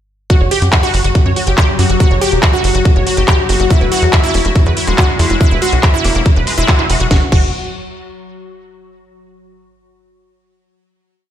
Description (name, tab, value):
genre	psychedelic trance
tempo	141 BPM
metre	4/4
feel	straight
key	unclear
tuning	A4 = 440 Hz
part	evolving wavetable pad	sustained chords	0.5-7.1 s	F#3 to F#4	-21 LUFS	left 3 dB	chorus, built-in reverb, vintage 12-bit sampler grit, sidechain pumping
part	wide unison pluck	riff	0.3-7.5 s	E4 to F#5	-17 LUFS	right 1 dB	auto-pan, sidechain pumping, tape echo
part	electronic kick drum	drums	0.3-7.4 s	none	-11 LUFS	equal	none
part	techno drum kit	drums	0.3-7.4 s	crash cymbal, handclaps, hi-hat, snare drum	-18 LUFS	left 1 dB	none
part	tight sequencer bass	bass	0.4-7.5 s	E1 to F#2	-14 LUFS	equal	none
part	metallic wobble bass	second line	4.1-7.0 s	G#3 to A#3	-25 LUFS	left 4 dB	chorus, sidechain pumping, high-pass filter, digital delay
room	light reverb, digital ambience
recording	played on a big sound system in a bare room, stone room reverb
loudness	-10 LUFS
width	side -10 dB against mid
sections	0.3-7.1 groove; 7.1-8.8 final chord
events	band accent 6.7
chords	0.3 F#5; 3.7 E5; 7.1 N.C.